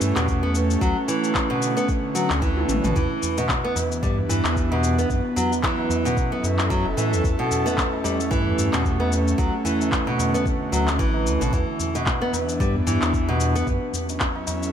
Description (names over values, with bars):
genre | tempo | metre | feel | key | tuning
organic downtempo | 112 BPM | 4/4 | swing 57% on 16ths | E dorian | A4 = 440 Hz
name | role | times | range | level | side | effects
airy breathy pad | sustained chords | 0.0-14.7 s | D3 to A4 | -26 LUFS | equal | chorus, sidechain pumping
nylon-string guitar | arpeggios | 0.0-13.7 s | B2 to B3 | -25 LUFS | right 1 dB | tape echo
warm sub bass | bass | 0.0-13.8 s | F#1 to A2 | -24 LUFS | equal | sidechain pumping
organic electronic drum kit | drums | 0.0-14.7 s | cabasa, handclaps, toms | -28 LUFS | left 2 dB | none
electronic kick drum | drums | 0.3-14.3 s | none | -26 LUFS | equal | none
tabla | percussion | 3.2-14.7 s | none | -32 LUFS | right 1 dB | none
room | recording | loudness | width
moderate concert hall reverb, RT60 2.4 s | none | -20 LUFS | side -9 dB against mid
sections
0.0-14.7 A section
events
drum fill 2.6-3.0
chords
0.0 A7/E; 0.8 Dmaj7; 3.0 Em7; 5.1 F#m7; 7.2 A7/E; 9.4 Dmaj7; 11.5 Em7; 13.7 F#m7